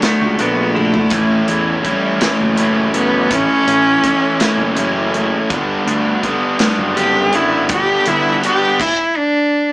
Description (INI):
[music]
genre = quiet-loud alternative rock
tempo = 55 BPM (dotted quarters)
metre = 6/8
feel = straight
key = unclear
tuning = A4 = 441 Hz
[part]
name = warm cello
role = melody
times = 0.0-9.7 s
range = G3 to G4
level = -15 LUFS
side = equal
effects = none
[part]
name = electric guitar through a small old amp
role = arpeggios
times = 0.0-1.1 s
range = D3 to E4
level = -22 LUFS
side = right 1 dB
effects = none
[part]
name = crunchy overdriven guitar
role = riff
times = 0.0-8.8 s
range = G2 to F#4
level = -18 LUFS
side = left 1 dB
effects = none
[part]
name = big rock drum kit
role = drums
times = 0.0-9.0 s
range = crash cymbal, hi-hat, kick drum, snare drum, toms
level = -20 LUFS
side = equal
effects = none
[part]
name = fuzz picked electric bass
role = bass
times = 0.2-8.3 s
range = F#1 to E2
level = -21 LUFS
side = equal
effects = overdrive
[part]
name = overdriven electric guitar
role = riff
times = 1.1-8.8 s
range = G2 to E4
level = -20 LUFS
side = right 2 dB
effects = none
[sound]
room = light reverb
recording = band playing live in one room, small speaker sound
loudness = -12 LUFS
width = side -23 dB against mid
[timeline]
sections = 0.0-9.7 A section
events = cello solo 0.0-9.7; drum fill 0.8-1.1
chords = 0.0 Dadd9; 1.1 A; 5.5 Gmaj7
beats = 0.03 | 1.13 2.22 | 3.32 4.41 | 5.51 6.60 | 7.70 8.79